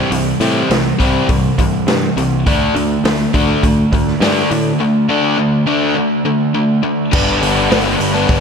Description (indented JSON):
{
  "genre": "classic rock",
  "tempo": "103 BPM",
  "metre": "4/4",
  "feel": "straight",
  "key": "unclear",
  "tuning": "A4 = 440 Hz",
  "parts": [
    { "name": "overdriven electric guitar", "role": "riff", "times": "0.0-8.4 s", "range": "G2 to D4", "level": "-16 LUFS", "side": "left 9 dB", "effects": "none" },
    { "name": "sludgy distorted guitar", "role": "riff", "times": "0.0-8.4 s", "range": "C3 to B4", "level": "-17 LUFS", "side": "right 10 dB", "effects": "overdrive" },
    { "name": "picked electric bass", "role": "bass", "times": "0.0-8.4 s", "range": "G1 to A2", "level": "-20 LUFS", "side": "equal", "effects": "none" },
    { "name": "vintage drum kit", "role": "drums", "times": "0.1-8.4 s", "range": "crash cymbal, hi-hat, kick drum, snare drum", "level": "-17 LUFS", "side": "right 1 dB", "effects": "none" }
  ],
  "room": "moderate lush hall reverb, RT60 1.9 s, small room ambience",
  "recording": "big arena sound",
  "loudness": "-12 LUFS",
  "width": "side -6 dB against mid",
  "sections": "0.0-7.1 A section; 7.1-8.4 B section",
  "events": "none",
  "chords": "0.0 C; 2.5 D5; 7.1 G"
}